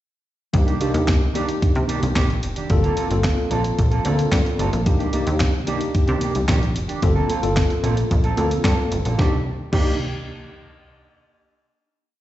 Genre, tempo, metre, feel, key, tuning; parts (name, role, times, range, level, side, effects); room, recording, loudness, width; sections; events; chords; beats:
early-eighties boogie funk; 111 BPM; 4/4; straight; C dorian; A4 = 440 Hz
tine electric piano; accompaniment; 0.5-10.0 s; A3 to A4; -25 LUFS; left 1 dB; medium stereo tremolo, plate reverb, slapback echo
mellow electric guitar; riff; 0.5-9.9 s; Eb3 to A4; -27 LUFS; right 4 dB; analog chorus, slapback echo
plucky analog bass; bass; 0.5-10.0 s; F1 to C3; -22 LUFS; equal
clean 12-bit digital drum machine; drums; 0.5-9.9 s; crash cymbal, handclaps, hi-hat, kick drum, snare drum; -21 LUFS; equal
light reverb; live gig heard through the venue's PA, recital hall reverb, nothing above 8.0 kHz; -18 LUFS; side -14 dB against mid
0.5-9.2 verse; 9.2-11.3 final chord
0.5 Cm9; 2.7 Gm11; 4.9 Cm9; 7.0 Gm11; 9.2 Cm9
| 0.54 1.08 1.62 2.16 | 2.70 3.24 3.78 4.32 | 4.86 5.40 5.95 6.49 | 7.03 7.57 8.11 8.65 | 9.19 9.73